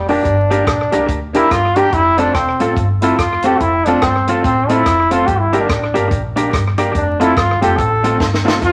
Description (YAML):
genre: ska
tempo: 143 BPM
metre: 4/4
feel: swing 61% on 8ths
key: F major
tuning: A4 = 440 Hz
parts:
  - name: bright trombone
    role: melody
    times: 0.0-8.2 s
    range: C4 to A4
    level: -18 LUFS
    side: equal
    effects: none
  - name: upright bass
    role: bass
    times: 0.0-8.7 s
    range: E1 to D2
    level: -23 LUFS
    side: equal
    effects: none
  - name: semi-hollow electric guitar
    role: accompaniment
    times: 0.1-8.6 s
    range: C4 to Bb4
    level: -23 LUFS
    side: equal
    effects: slapback echo
  - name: warm upright piano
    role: stabs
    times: 0.1-8.6 s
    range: A3 to Bb4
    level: -22 LUFS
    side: equal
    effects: none
  - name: compact cocktail drum kit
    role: drums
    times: 0.1-8.7 s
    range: hi-hat, kick drum, rim click, snare drum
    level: -22 LUFS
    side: equal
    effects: slapback echo
  - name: clear horn section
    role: melody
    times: 8.6-8.7 s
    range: F3 to F4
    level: -15 LUFS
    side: equal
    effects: none
room: wet studio reverb, RT60 0.8 s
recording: vinyl crackle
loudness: -15 LUFS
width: mono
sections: 0.0-8.6 A section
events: trombone solo 0.0-8.6; drum fill 8.2-8.6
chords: 0.0 Gm; 1.9 F; 5.3 Gm; 7.0 F